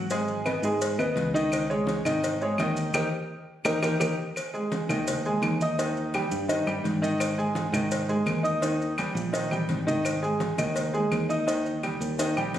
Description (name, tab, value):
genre	latin, salsa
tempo	169 BPM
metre	4/4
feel	straight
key	G# minor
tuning	A4 = 439 Hz
part	clear concert grand piano	accompaniment	0.0-12.6 s	D#3 to D#6	-27 LUFS	equal	none
part	fingered electric bass	bass	0.0-12.6 s	G#1 to G#2	-31 LUFS	right 1 dB	none
part	congas	percussion	0.1-12.6 s	none	-35 LUFS	left 2 dB	none
part	cowbell	percussion	0.1-12.6 s	none	-35 LUFS	left 3 dB	none
part	maracas	percussion	0.1-12.6 s	none	-40 LUFS	right 2 dB	none
part	claves	percussion	0.5-12.5 s	none	-34 LUFS	equal	none
room	moderate large studio reverb, RT60 1.2 s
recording	recorded on a phone in the room, studio reverb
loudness	-24 LUFS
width	side -11 dB against mid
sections	0.0-4.4 A section; 4.4-12.6 B section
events	band accent 2.9-4.4; drum fill 3.7-4.4, 9.5-10.1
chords	0.1 G#m; 1.5 C#sus2; 2.9 D#; 4.4 G#5; 5.8 D#; 7.2 G#5; 8.6 D#; 10.1 G#5; 11.5 D#